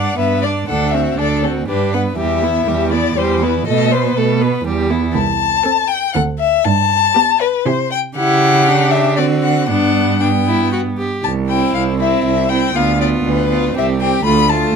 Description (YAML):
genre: quick classical-period movement for string quartet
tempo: 120 BPM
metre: 3/4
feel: straight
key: G major, C major from 11.2 s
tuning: A4 = 442 Hz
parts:
  - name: rich violin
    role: melody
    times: 0.0-14.8 s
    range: A4 to B5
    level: -17 LUFS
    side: left 9 dB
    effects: none
  - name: clear violin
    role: second line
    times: 0.0-14.8 s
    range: D4 to D5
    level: -21 LUFS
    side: left 2 dB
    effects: none
  - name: rich viola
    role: accompaniment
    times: 0.0-14.8 s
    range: G3 to E4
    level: -20 LUFS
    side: right 3 dB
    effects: none
  - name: warm cello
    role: bass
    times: 0.0-14.7 s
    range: C2 to D3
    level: -18 LUFS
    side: right 6 dB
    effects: none
room: light reverb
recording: none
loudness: -13 LUFS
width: side -6 dB against mid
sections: 0.0-11.2 A section; 11.2-14.8 B section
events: none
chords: 0.0 G; 0.7 D7; 1.7 G; 2.2 Em; 3.7 B7b9; 4.7 Em; 5.2 Am/C; 6.2 D7(no3); 6.7 G; 7.7 C; 8.2 C#dim; 9.2 D7; 9.7 G; 11.2 C; 12.8 Bdim/D; 13.8 C5; 14.3 Dm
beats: 0.19 | 0.69 1.19 1.68 | 2.18 2.68 3.18 | 3.67 4.17 4.66 | 5.16 5.65 6.15 | 6.66 7.17 7.66 | 8.17 8.67 9.18 | 9.69 10.21 10.72 | 11.24 11.75 12.26 | 12.76 13.26 13.76 | 14.26 14.75